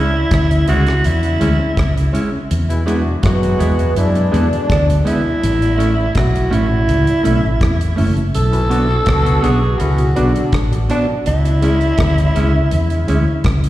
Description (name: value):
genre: roots reggae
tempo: 82 BPM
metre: 4/4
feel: straight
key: unclear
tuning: A4 = 440 Hz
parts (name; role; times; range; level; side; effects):
- raspy tenor saxophone; melody; 0.0-13.4 s; B3 to A4; -19 LUFS; right 1 dB; tape echo, slapback echo
- clean electric guitar; accompaniment; 0.0-13.2 s; G#3 to F#4; -22 LUFS; right 2 dB; tape echo, slapback echo
- mellow tonewheel organ; accompaniment; 0.0-13.7 s; E2 to F#4; -27 LUFS; left 2 dB; slow rotary speaker, slapback echo
- vintage muted fingered electric bass; bass; 0.0-13.7 s; F#1 to F#2; -15 LUFS; equal; none
- deep reggae drum kit; drums; 0.3-13.7 s; hi-hat, kick drum, rim click; -20 LUFS; equal; none
- mellow horn section; second line; 2.7-10.9 s; B2 to F#4; -24 LUFS; left 2 dB; tape echo, slapback echo
room: studio ambience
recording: live gig heard through the venue's PA, recital hall reverb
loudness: -13 LUFS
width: side -15 dB against mid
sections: 0.0-13.7 A section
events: none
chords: 0.0 C#m; 2.5 E; 5.4 A; 8.3 Bm; 11.3 C#m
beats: 0.31 1.04 1.77 | 2.50 3.23 3.96 4.69 | 5.42 6.15 6.88 7.61 | 8.34 9.07 9.80 10.53 | 11.26 11.99 12.72 13.45